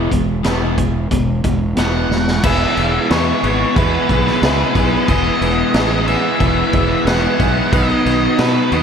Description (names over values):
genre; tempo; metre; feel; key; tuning
classic rock; 91 BPM; 4/4; straight; unclear; A4 = 441 Hz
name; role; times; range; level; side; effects
biting overdriven guitar; riff; 0.0-8.8 s; E2 to G#4; -20 LUFS; left 11 dB; slapback echo
raw garage guitar; riff; 0.0-8.8 s; B2 to E4; -21 LUFS; right 11 dB; overdrive
fuzz fingered electric bass; bass; 0.0-8.8 s; E1 to B2; -20 LUFS; equal; overdrive
vintage drum kit; drums; 0.1-8.8 s; crash cymbal, hi-hat, kick drum, snare drum; -19 LUFS; equal; none
octave-fuzz lead guitar; melody; 1.8-8.8 s; B4 to F#5; -21 LUFS; left 1 dB; distortion, slapback echo, digital delay
bright upright piano; accompaniment; 2.4-8.8 s; D#4 to B4; -26 LUFS; left 2 dB; slapback echo
tonewheel organ; sustained chords; 2.4-8.8 s; F#3 to B4; -28 LUFS; right 2 dB; none
room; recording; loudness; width
moderate scoring stage reverb, RT60 2.0 s; big arena sound; -13 LUFS; side -7 dB against mid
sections
0.0-2.4 A section; 2.4-8.8 B section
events
drum fill 2.1-2.4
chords
0.0 E; 7.7 B